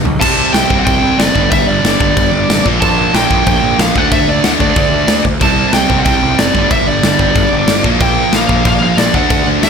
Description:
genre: punk rock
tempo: 185 BPM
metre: 4/4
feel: straight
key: unclear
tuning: A4 = 440 Hz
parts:
  - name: distorted electric guitar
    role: riff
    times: 0.0-9.7 s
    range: G2 to D4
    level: -17 LUFS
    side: left 15 dB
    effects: distortion
  - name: sludgy distorted guitar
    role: riff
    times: 0.0-9.7 s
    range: G2 to D4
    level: -17 LUFS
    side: right 15 dB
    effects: overdrive
  - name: fuzz picked electric bass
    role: bass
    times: 0.0-9.7 s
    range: F#1 to D2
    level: -19 LUFS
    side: equal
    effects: overdrive
  - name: big rock drum kit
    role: drums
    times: 0.1-9.7 s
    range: crash cymbal, kick drum, snare drum, toms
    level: -14 LUFS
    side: left 1 dB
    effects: none
  - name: high-gain lead guitar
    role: melody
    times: 0.2-9.7 s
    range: D5 to A5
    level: -15 LUFS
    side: right 1 dB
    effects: distortion
room: little or no reverb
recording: none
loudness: -9 LUFS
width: side -6 dB against mid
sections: 0.2-9.7 A section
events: drum fill 0.0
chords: 0.2 C5; 1.3 G5; 2.6 Bb5; 4.0 D5; 5.4 C5; 6.5 G5; 7.8 Bb5; 9.1 D

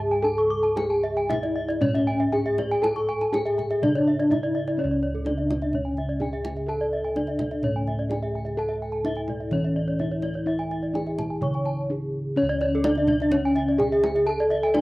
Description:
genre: Balinese gamelan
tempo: 127 BPM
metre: 4/4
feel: straight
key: C# pelog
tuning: A4 = 443 Hz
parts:
  - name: gamelan-type bronze metallophone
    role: melody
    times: 0.0-14.8 s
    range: C#4 to C#5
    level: -24 LUFS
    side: equal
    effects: cassette tape
  - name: gamelan-type bronze metallophone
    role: arpeggios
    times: 0.0-14.7 s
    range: A4-40c to C#6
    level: -32 LUFS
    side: right 2 dB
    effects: cassette tape
  - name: gamelan-type bossed gongs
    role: bass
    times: 0.0-14.8 s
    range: C#2 to A4-40c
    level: -28 LUFS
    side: equal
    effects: none
  - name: gamelan-type bronze metallophone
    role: arpeggios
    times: 0.2-14.8 s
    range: C#5 to D6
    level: -32 LUFS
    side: left 1 dB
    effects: cassette tape
  - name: kendang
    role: percussion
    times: 0.6-14.8 s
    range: none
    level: -34 LUFS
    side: right 1 dB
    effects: none
room: moderate spring reverb, RT60 1.3 s, small room ambience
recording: home recording on cassette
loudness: -22 LUFS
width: side -19 dB against mid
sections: 0.0-4.8 A section; 4.8-14.8 B section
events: none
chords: none

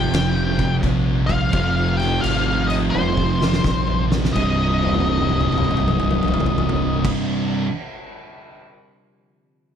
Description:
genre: stoner and doom metal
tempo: 85 BPM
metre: 4/4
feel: swing 66% on 8ths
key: C minor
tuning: A4 = 441 Hz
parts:
  - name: octave-fuzz lead guitar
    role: melody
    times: 0.0-7.1 s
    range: C5 to G5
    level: -24 LUFS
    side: left 3 dB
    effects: distortion, slapback echo
  - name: analog drone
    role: sustained chords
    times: 0.0-7.1 s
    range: C3 to C4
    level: -34 LUFS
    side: left 1 dB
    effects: none
  - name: thick fuzz guitar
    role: riff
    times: 0.0-7.7 s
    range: C2 to F3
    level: -25 LUFS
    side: left 8 dB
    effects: distortion
  - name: thick fuzz guitar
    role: riff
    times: 0.0-7.6 s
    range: C2 to F3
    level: -23 LUFS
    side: right 10 dB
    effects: distortion
  - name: fuzz fingered electric bass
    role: bass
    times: 0.0-7.1 s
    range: C1 to Bb1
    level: -24 LUFS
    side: equal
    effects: overdrive
  - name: oversized low-tuned drum kit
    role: drums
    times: 0.1-8.6 s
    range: crash cymbal, kick drum, snare drum, toms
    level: -24 LUFS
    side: left 1 dB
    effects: none
room: little or no reverb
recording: none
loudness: -17 LUFS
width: side -8 dB against mid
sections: 0.0-4.3 A section; 4.3-7.2 B section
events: drum fill 2.9-4.3, 4.7-7.0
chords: 0.0 Fm; 4.3 Cm

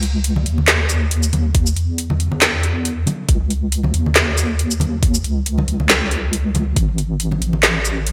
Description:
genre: deep dubstep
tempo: 138 BPM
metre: 4/4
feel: swing 54% on 16ths, half-time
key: C# minor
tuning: A4 = 441 Hz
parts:
  - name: deep soft wobble bass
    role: bass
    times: 0.0-8.1 s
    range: G#1 to E2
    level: -21 LUFS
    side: equal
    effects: chorus
  - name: garage drum kit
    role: drums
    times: 0.0-8.1 s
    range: handclaps, hi-hat, shaker, snare drum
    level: -20 LUFS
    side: equal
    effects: overdrive, gated reverb
  - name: congas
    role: percussion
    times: 0.4-7.6 s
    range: none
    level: -28 LUFS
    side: equal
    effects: none
  - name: electronic kick drum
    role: drums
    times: 1.5-6.9 s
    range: none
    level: -19 LUFS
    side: equal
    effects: overdrive
room: light reverb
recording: bright 1980s-style digital production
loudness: -18 LUFS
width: mono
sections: 0.0-8.1 A section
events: none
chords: none

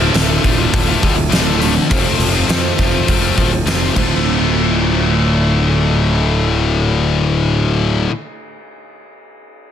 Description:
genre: quiet-loud alternative rock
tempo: 102 BPM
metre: 4/4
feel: straight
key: D minor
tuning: A4 = 443 Hz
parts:
  - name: fingerpicked steel-string acoustic guitar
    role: arpeggios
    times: 0.0-8.1 s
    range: D2 to F4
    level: -23 LUFS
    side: right 6 dB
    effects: analog delay
  - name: high-gain distorted guitar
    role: riff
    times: 0.0-8.1 s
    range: D2 to F4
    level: -17 LUFS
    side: left 6 dB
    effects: distortion
  - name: fuzz picked electric bass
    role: bass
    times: 0.0-8.1 s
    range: D1 to F2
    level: -17 LUFS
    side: equal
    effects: overdrive
  - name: oversized low-tuned drum kit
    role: drums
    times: 0.1-4.1 s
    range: hi-hat, kick drum, ride cymbal, snare drum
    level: -19 LUFS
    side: right 1 dB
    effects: none
room: light reverb, small room ambience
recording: dense, heavily limited modern master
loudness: -12 LUFS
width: side -9 dB against mid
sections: 0.0-4.3 A section; 4.3-6.6 B section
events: drum fill 4.0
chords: 0.0 Dm; 1.9 F; 4.0 Dm

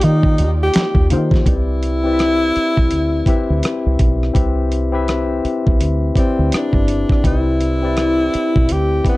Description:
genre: R&B, neo-soul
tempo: 83 BPM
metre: 4/4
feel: swing 61% on 16ths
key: C major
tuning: A4 = 439 Hz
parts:
  - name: breathy tenor saxophone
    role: melody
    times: 0.0-9.2 s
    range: C4 to G4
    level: -19 LUFS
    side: equal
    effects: none
  - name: barky tine electric piano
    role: accompaniment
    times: 0.0-9.2 s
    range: Bb3 to E5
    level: -21 LUFS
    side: left 4 dB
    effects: overdrive
  - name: warm studio string section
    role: sustained chords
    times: 0.0-1.4 s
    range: Eb3 to D5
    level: -33 LUFS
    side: right 1 dB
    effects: none
  - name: deep dub fingered electric bass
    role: bass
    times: 0.0-9.0 s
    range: G1 to Eb3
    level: -18 LUFS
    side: equal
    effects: none
  - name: dusty soul sampler-style drum kit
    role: drums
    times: 0.0-9.2 s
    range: hi-hat, kick drum, rim click, snare drum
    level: -16 LUFS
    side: equal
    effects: overdrive
room: light reverb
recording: dark, warm production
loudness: -14 LUFS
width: side -19 dB against mid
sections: 0.0-1.5 A section; 1.5-9.2 B section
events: none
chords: 0.0 Ebmaj9; 1.5 Cmaj9

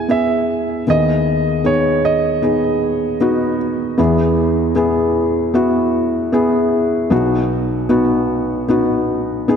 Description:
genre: pop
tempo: 77 BPM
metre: 4/4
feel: straight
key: E major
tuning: A4 = 440 Hz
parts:
  - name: clear grand piano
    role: melody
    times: 0.0-3.6 s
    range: C#5 to E5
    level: -19 LUFS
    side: right 3 dB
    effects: diffuse ambient delay
  - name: felt-muted upright piano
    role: accompaniment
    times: 0.0-9.6 s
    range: B1 to G#4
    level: -15 LUFS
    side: left 1 dB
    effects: none
room: wet lush hall reverb, RT60 2.4 s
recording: dreamy mix soaked in reverb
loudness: -14 LUFS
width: side -7 dB against mid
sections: 0.0-9.6 A section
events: none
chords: 0.0 E; 0.9 G#m/D#; 4.0 E; 7.1 B

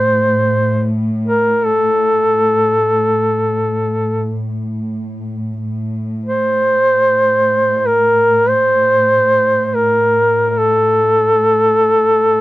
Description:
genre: caucasian folk, Caucasian lament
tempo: free time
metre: none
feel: none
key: A phrygian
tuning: A4 = 441 Hz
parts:
  - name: mellow duduk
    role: melody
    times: 0.0-12.4 s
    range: A4 to C5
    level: -12 LUFS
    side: equal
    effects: none
  - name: dark studio cello section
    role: drone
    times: 0.0-12.4 s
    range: A2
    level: -21 LUFS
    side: equal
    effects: none
room: light reverb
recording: dry, close 1970s-style studio recording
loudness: -12 LUFS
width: side -16 dB against mid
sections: 0.0-12.4 A section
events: none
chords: none

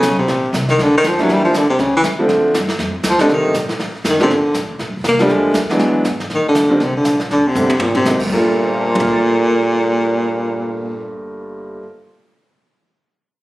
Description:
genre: jazz, small-group swing and bop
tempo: 240 BPM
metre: 4/4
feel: swing 59% on 8ths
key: G minor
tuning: A4 = 439 Hz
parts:
  - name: warm baritone saxophone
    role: melody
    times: 0.0-11.1 s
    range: Bb2 to Bb3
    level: -15 LUFS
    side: equal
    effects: none
  - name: clear concert grand piano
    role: accompaniment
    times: 0.0-12.1 s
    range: G2 to A6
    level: -18 LUFS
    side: right 1 dB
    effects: none
  - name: upright bass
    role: bass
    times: 0.0-11.8 s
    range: F1 to A2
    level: -27 LUFS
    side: equal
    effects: none
  - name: jazz brush drum kit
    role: drums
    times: 0.0-9.1 s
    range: brushed snare drum, crash cymbal, hi-hat, kick drum, snare drum, toms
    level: -23 LUFS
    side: equal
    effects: none
room: light reverb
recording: recorded on a phone in the room, studio reverb, compression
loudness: -13 LUFS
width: side -18 dB against mid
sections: 0.0-6.3 A section; 6.3-8.3 B section; 8.3-10.3 C section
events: drum fill 7.6-8.1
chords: 0.3 Bb; 1.3 Em7b5; 1.8 A; 2.3 Dm7; 3.3 Am7b5; 3.8 D; 4.3 Gm7; 5.8 E7; 6.3 Am7b5; 6.8 Csus2; 7.3 D7sus4; 7.8 Ab9; 8.3 Gm7

